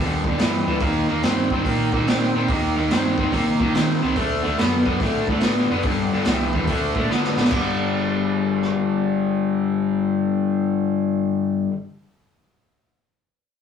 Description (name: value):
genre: blues rock power trio and southern rock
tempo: 143 BPM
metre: 4/4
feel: swing 66% on 8ths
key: G minor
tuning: A4 = 440 Hz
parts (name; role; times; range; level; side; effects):
- raw garage guitar; riff; 0.0-11.7 s; G2 to C4; -20 LUFS; left 2 dB; overdrive
- growling picked electric bass; bass; 0.0-11.7 s; F#1 to Eb3; -28 LUFS; equal; overdrive
- raw garage drum kit; drums; 0.2-8.7 s; crash cymbal, hi-hat, kick drum, rim click, snare drum; -24 LUFS; right 1 dB; none
room: moderate studio reverb, RT60 0.6 s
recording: rough rehearsal-room recording, warm saturation, small room ambience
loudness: -18 LUFS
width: side -7 dB against mid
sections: 0.0-7.5 A section; 7.5-10.9 B section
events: drum fill 7.1-7.5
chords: 0.0 G5; 0.8 Eb; 4.2 D; 5.8 G5; 6.7 D5; 7.5 G5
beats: 0.38 | 0.80 1.22 1.64 2.06 | 2.48 2.90 3.32 3.74 | 4.16 4.58 5.00 5.42 | 5.84 6.26 6.68 7.10 | 7.52 7.94 8.36 8.78 | 9.20 9.62 10.04 10.45